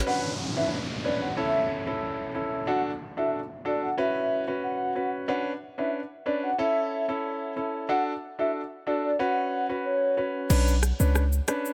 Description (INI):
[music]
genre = dancehall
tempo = 92 BPM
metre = 4/4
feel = straight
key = B minor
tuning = A4 = 440 Hz
[part]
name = clear concert grand piano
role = accompaniment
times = 0.0-11.7 s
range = C#4 to B4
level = -32 LUFS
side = equal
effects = none
[part]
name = hollow clarinet-like synth lead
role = melody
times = 0.1-10.3 s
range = C#5 to F#5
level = -32 LUFS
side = equal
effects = chorus, digital delay
[part]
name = downlifter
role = sound effects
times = 0.1-5.3 s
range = none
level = -38 LUFS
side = equal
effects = none
[part]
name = warm 808-style bass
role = bass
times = 10.5-11.4 s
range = B1 to C#2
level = -25 LUFS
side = equal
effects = none
[part]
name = island pop drum kit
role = drums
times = 10.5-11.7 s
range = crash cymbal, hi-hat, rim click, shaker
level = -33 LUFS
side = equal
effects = none
[sound]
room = light reverb, digital ambience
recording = none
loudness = -28 LUFS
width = mono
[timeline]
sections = 0.1-10.5 A section; 10.5-11.7 B section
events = kick muted 10.5-11.7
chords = 0.1 Bmadd9; 1.4 A; 2.7 D; 4.0 F#sus4; 5.3 Bmadd9; 6.6 A; 7.9 D; 9.2 F#sus4; 10.5 Bmadd9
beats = | 0.07 0.72 1.37 2.02 | 2.67 3.33 3.98 4.63 | 5.28 5.94 6.59 7.24 | 7.89 8.54 9.20 9.85 | 10.50 11.15